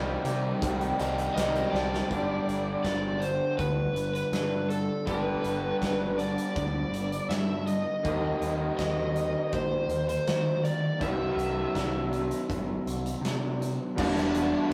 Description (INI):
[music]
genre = rock, shoegaze and dream pop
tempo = 81 BPM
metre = 4/4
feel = straight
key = G major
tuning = A4 = 439 Hz
[part]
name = lead guitar through a small cranked amp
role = melody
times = 0.0-14.7 s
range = D4 to G5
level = -34 LUFS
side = equal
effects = overdrive
[part]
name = fingerpicked twelve-string acoustic guitar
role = arpeggios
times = 0.0-14.7 s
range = E3 to D4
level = -45 LUFS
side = equal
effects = none
[part]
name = crunchy overdriven guitar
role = riff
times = 0.0-2.1, 14.0-14.7 s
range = C3 to E4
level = -40 LUFS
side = equal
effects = none
[part]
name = electric guitar through a small old amp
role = riff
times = 0.0-14.7 s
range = E2 to G4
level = -35 LUFS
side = equal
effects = none
[part]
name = raw garage guitar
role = riff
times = 0.0-14.7 s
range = E2 to G4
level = -36 LUFS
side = equal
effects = overdrive
[part]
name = growling picked electric bass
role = bass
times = 0.0-14.7 s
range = E1 to Eb3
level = -36 LUFS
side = equal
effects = overdrive
[part]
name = huge arena drum kit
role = drums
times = 0.2-14.5 s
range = crash cymbal, hi-hat, kick drum, snare drum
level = -38 LUFS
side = equal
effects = none
[sound]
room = wet studio reverb, RT60 0.6 s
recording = rough rehearsal-room recording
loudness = -29 LUFS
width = mono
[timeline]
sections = 0.0-2.1 A section; 2.1-14.0 B section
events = drum fill 1.7-2.1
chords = 0.0 Cmadd9; 2.1 G; 8.0 Eb6; 11.0 Cadd9; 14.0 Em9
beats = 0.62 1.36 | 2.10 2.85 3.59 4.33 | 5.08 5.82 6.56 7.30 | 8.05 8.79 9.53 10.28 | 11.02 11.76 12.50 13.24 | 13.98 14.72